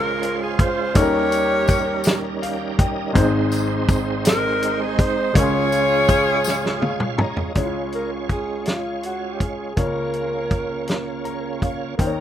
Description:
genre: slow gospel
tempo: 54 BPM (dotted quarters)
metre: 6/8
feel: straight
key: Db major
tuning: A4 = 440 Hz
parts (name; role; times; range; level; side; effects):
- bright saxophone section; melody; 0.0-7.2 s; Eb4 to Db5; -20 LUFS; left 1 dB; plate reverb
- clear grand piano; accompaniment; 0.0-12.2 s; Ab1 to C6; -25 LUFS; left 2 dB; plate reverb
- bright tonewheel organ; sustained chords; 0.0-12.2 s; Db3 to Ab5; -26 LUFS; right 5 dB; slow rotary speaker, chorus vibrato, plate reverb
- warm soul drum kit; drums; 0.2-12.2 s; hi-hat, kick drum, snare drum, toms; -20 LUFS; equal; none
- tambourine; percussion; 1.0-6.8 s; none; -34 LUFS; left 9 dB; none
- breathy alto saxophone; melody; 8.0-11.6 s; F4 to Bb4; -28 LUFS; equal; plate reverb
room: light reverb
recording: rough home demo mix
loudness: -18 LUFS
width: side -10 dB against mid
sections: 0.0-7.6 A section; 7.6-12.2 B section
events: grand piano fill 2.1-3.2, 6.5-7.6, 10.9-12.0; tonewheel organ fill 2.1-3.2, 6.5-7.6; drum fill 6.5-7.6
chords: 0.0 Dbmaj7; 1.0 Eb7; 3.2 Ab; 5.4 Dbmaj7; 7.6 Db; 9.8 Bbm/Db

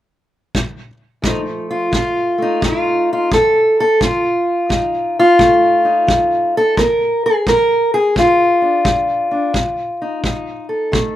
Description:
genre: acoustic country blues, solo or duo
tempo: 87 BPM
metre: 4/4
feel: swing 67% on 8ths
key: F mixolydian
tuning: A4 = 439 Hz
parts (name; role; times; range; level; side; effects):
- kick drum; drums; 0.5-11.1 s; none; -20 LUFS; equal; none
- fingerpicked steel-string acoustic guitar; melody; 1.2-11.2 s; F2 to Bb4; -13 LUFS; equal; none
room: little or no reverb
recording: none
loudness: -13 LUFS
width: side -12 dB against mid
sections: 0.0-1.2 A section; 1.2-11.2 B section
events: none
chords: 0.0 N.C.; 1.2 F7; 6.8 Bb; 9.5 F7

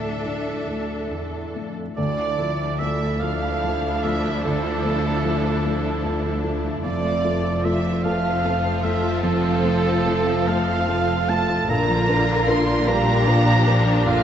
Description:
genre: cinematic, emotional film score for orchestra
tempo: 50 BPM (dotted quarters)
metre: 6/8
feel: rubato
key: D minor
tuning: A4 = 440 Hz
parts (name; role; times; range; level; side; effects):
- rich studio violin section; melody; 0.0-14.2 s; A4 to C6; -31 LUFS; equal; none
- rich studio violin section; second line; 0.0-14.2 s; D4 to E5; -29 LUFS; right 1 dB; none
- clear studio viola section; accompaniment; 0.0-14.2 s; D3 to A4; -28 LUFS; equal; none
- felt-muted upright piano; accompaniment; 0.0-14.2 s; Bb1 to D5; -27 LUFS; left 3 dB; none
- concert harp; arpeggios; 0.0-14.2 s; Bb2 to Bb5; -28 LUFS; right 1 dB; none
- rich studio cello section; bass; 0.0-14.2 s; D2 to Bb2; -29 LUFS; equal; none
- clear oboe; second line; 2.0-14.2 s; A4 to C6; -26 LUFS; right 5 dB; none
- dark studio double bass section; bass; 2.0-14.2 s; F1 to D2; -26 LUFS; equal; none
room: wet cathedral reverb, RT60 5.0 s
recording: in a vast, echoing space, nothing above 7.9 kHz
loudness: -19 LUFS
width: side -9 dB against mid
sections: 0.0-2.0 A section; 2.0-14.2 B section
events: none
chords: 0.0 Dmadd9; 6.8 F6; 11.7 Bb

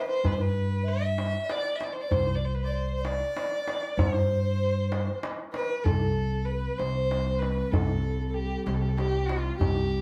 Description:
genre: Persian modal ensemble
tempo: 64 BPM (dotted quarters)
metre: 6/8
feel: straight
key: C dastgah mahur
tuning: A4 = 438 Hz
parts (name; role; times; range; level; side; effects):
- rich violin; melody; 0.0-10.0 s; F4 to E5; -34 LUFS; equal; none
- breathy mellow round clay ocarina; second line; 0.0-10.0 s; F4 to E5; -36 LUFS; equal; none
- upright bass; bass; 0.2-10.0 s; C2 to G2; -31 LUFS; equal; none
- tombak; percussion; 0.2-9.7 s; none; -33 LUFS; equal; none
- clear cello; drone; 5.9-10.0 s; C2; -38 LUFS; equal; none
room: wet studio reverb, RT60 0.5 s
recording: band playing live in one room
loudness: -28 LUFS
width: mono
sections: 0.0-5.9 A section; 5.9-10.0 B section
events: none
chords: none

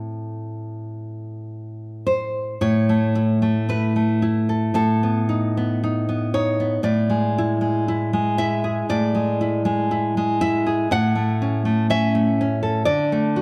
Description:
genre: romantic piece for solo classical guitar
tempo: 53-62 BPM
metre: 4/4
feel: rubato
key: A major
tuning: A4 = 440 Hz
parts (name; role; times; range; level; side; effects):
- nylon-string guitar; solo; 0.0-13.4 s; A2 to F#5; -22 LUFS; equal; none
room: moderate recital hall reverb, RT60 1.5 s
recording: none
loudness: -21 LUFS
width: mono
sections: 0.0-2.6 A section; 2.6-13.4 B section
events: none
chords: 0.0 Am; 2.6 A; 4.8 B7/A; 6.8 E7/A; 10.9 A; 12.9 D5

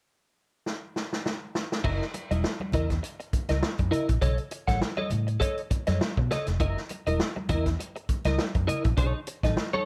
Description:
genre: funk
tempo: 101 BPM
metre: 4/4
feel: swing 56% on 16ths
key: F# mixolydian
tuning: A4 = 436 Hz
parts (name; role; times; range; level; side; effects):
- swinging big-band drum kit; drums; 0.7-9.7 s; crash cymbal, hi-hat, kick drum, snare drum; -32 LUFS; equal; none
- clean electric guitar; accompaniment; 1.8-9.9 s; D#4 to F#5; -32 LUFS; equal; ensemble chorus
- vintage muted fingered electric bass; bass; 1.8-9.5 s; E1 to B2; -30 LUFS; equal; none
- congas; percussion; 1.8-9.9 s; none; -39 LUFS; equal; none
room: light reverb, small room ambience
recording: none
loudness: -28 LUFS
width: mono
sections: 0.0-1.8 A section; 1.8-9.9 B section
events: drum fill 0.7-1.8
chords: 0.0 N.C.; 1.8 F#6 (rootless); 4.2 B9 (rootless); 6.6 F#6 (rootless); 9.0 B9

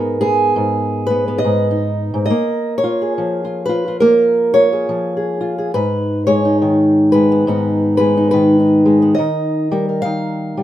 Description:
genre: folk, solo fingerstyle acoustic guitar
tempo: 70 BPM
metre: 4/4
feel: swing 61% on 8ths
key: G# dorian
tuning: A4 = 440 Hz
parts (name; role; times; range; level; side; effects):
- fingerpicked old ladder-braced acoustic guitar; solo; 0.0-10.6 s; G#2 to E#5; -13 LUFS; equal; none
room: wet studio ambience, RT60 0.5 s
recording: minimal, uncompressed stereo recording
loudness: -13 LUFS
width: side -12 dB against mid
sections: 0.0-10.6 A section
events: none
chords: 0.0 G#m; 2.3 A#m7; 5.7 G#m; 9.2 D#add9

